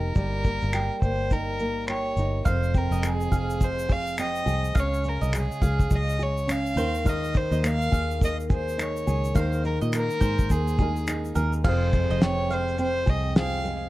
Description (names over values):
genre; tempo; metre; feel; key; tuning
acoustic pop; 104 BPM; 4/4; swing 60% on 16ths; unclear; A4 = 438 Hz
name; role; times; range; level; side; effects
warm violin; melody; 0.0-13.8 s; Ab4 to F5; -30 LUFS; equal; none
nylon-string guitar; accompaniment; 0.0-13.9 s; F2 to Ab4; -29 LUFS; right 1 dB; none
fingered electric bass; bass; 0.0-13.9 s; F1 to Bb2; -28 LUFS; equal; none
cloth-damped thuddy drum kit; drums; 0.2-13.8 s; crash cymbal, finger snaps, kick drum, shaker, snare drum; -24 LUFS; equal; none
mandolin; arpeggios; 2.5-13.0 s; Bb4 to F5; -35 LUFS; right 4 dB; none
tube shaker; percussion; 2.5-11.6 s; none; -47 LUFS; left 6 dB; none
warm upright piano; accompaniment; 7.0-13.9 s; Ab3 to Bb4; -38 LUFS; left 6 dB; none
room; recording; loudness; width
small room reverb; none; -22 LUFS; side -17 dB against mid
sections
0.0-2.5 A section; 2.5-11.6 B section; 11.6-13.9 C section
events
none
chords
0.0 Eb; 2.5 Fm; 4.8 Db; 6.8 Ebsus4; 11.6 Fm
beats
| 0.16 0.74 1.31 1.89 | 2.46 3.04 3.61 4.19 | 4.76 5.34 5.91 6.49 | 7.06 7.63 8.21 8.78 | 9.36 9.93 10.50 11.08 | 11.65 12.22 12.79 13.37